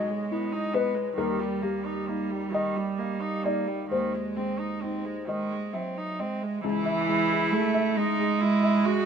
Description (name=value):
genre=neoclassical piano and strings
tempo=44 BPM (dotted quarters)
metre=6/8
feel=rubato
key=C# minor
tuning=A4 = 440 Hz
part: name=rich cello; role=second line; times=0.0-9.1 s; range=E3 to A3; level=-28 LUFS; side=right 5 dB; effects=none
part: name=felt-muted upright piano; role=accompaniment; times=0.0-9.1 s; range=B1 to E#5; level=-30 LUFS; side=left 4 dB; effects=none
part: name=rich viola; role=accompaniment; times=0.0-9.1 s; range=D#3 to F#4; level=-33 LUFS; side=right 1 dB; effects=none
room=light reverb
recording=minimal, uncompressed stereo recording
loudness=-25 LUFS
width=side -7 dB against mid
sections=0.0-6.6 A section; 6.6-9.1 B section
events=none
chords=0.0 G#m/B; 1.2 D#; 3.9 G#/D#; 6.6 C#m